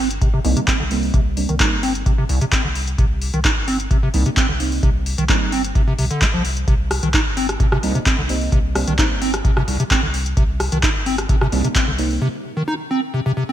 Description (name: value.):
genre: acid house.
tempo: 130 BPM.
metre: 4/4.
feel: straight.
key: C minor.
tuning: A4 = 440 Hz.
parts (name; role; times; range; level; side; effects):
acid bass, square; riff; 0.0-13.5 s; C2 to Eb4; -22 LUFS; equal; overdrive, wide subtle chorus, sidechain pumping, ping-pong delay.
warm sub bass; bass; 0.0-12.2 s; G1 to C2; -24 LUFS; equal; sidechain pumping.
booming analog drum machine; drums; 0.1-12.2 s; handclaps, hi-hat, rim click; -22 LUFS; equal; gated reverb.
electronic kick drum; drums; 0.2-11.9 s; none; -19 LUFS; equal; none.
deep mellow chord stab; stabs; 0.4-12.2 s; G3 to Eb4; -26 LUFS; right 3 dB; chorus, phaser, ping-pong delay.
room: light reverb.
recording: bright 1980s-style digital production.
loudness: -16 LUFS.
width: side -12 dB against mid.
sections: 0.0-13.5 A section.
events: break 12.2-13.5.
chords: 0.0 Cm7.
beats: 0.22 0.68 | 1.14 1.60 2.06 2.52 | 2.98 3.45 3.91 4.37 | 4.83 5.29 5.75 6.22 | 6.68 7.14 7.60 8.06 | 8.52 8.98 9.45 9.91 | 10.37 10.83 11.29 11.75 | 12.22 12.68 13.14.